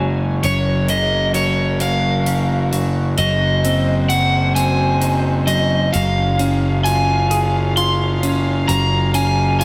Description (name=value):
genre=post-rock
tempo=44 BPM (dotted quarters)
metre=6/8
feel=straight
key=unclear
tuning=A4 = 443 Hz
part: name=overdriven semi-hollow guitar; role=melody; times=0.0-9.6 s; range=Db5 to C6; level=-22 LUFS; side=equal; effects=slapback echo
part: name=warm studio string section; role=sustained chords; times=0.0-9.6 s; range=Gb3 to Ab5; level=-31 LUFS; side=equal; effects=none
part: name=clean electric guitar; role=arpeggios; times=0.0-9.6 s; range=Gb2 to Ab4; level=-25 LUFS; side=equal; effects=slapback echo
part: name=fuzz picked electric bass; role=bass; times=0.0-9.6 s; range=Gb1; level=-20 LUFS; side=equal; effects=overdrive
part: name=hi-hat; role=drums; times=0.4-9.6 s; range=none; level=-34 LUFS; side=equal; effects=none
room=light reverb, small room ambience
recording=none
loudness=-17 LUFS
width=mono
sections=0.0-5.9 A section; 5.9-9.6 B section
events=none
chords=0.4 Gb; 3.2 Ab/Gb; 5.9 Db/Gb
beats=| 0.44 1.81 | 3.19 4.56 | 5.93 7.31 | 8.68